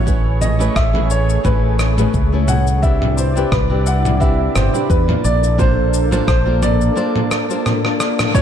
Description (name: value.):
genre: sunset chillout.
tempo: 87 BPM.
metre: 4/4.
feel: swing 55% on 16ths.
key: unclear.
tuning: A4 = 441 Hz.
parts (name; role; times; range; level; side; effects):
clear baby grand piano; melody; 0.0-8.4 s; B4 to F#5; -22 LUFS; left 1 dB; tape echo.
nylon-string guitar; accompaniment; 0.0-8.4 s; A3 to D5; -22 LUFS; moving between left 7 dB and right 7 dB; auto-pan, tape echo.
lush unison pad; sustained chords; 0.0-8.4 s; C3 to D5; -24 LUFS; equal; chorus.
mellow fretless electric bass; bass; 0.0-6.9 s; G1 to E2; -17 LUFS; equal; none.
dusty soul sampler-style drum kit; drums; 0.1-8.4 s; rim click, shaker, toms; -22 LUFS; equal; none.
electronic kick drum; drums; 0.1-8.4 s; none; -18 LUFS; equal; overdrive.
room: light reverb.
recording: dark, warm production.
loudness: -13 LUFS.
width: side -9 dB against mid.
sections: 0.0-8.3 A section.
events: break 7.0-8.3; drum fill 7.7-8.3; band accent 8.2.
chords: 0.1 Amaj9; 2.8 Cmaj9; 5.2 Bbmaj9.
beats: | 0.07 0.76 1.45 2.14 | 2.83 3.52 4.21 4.90 | 5.59 6.28 6.97 7.66 | 8.35.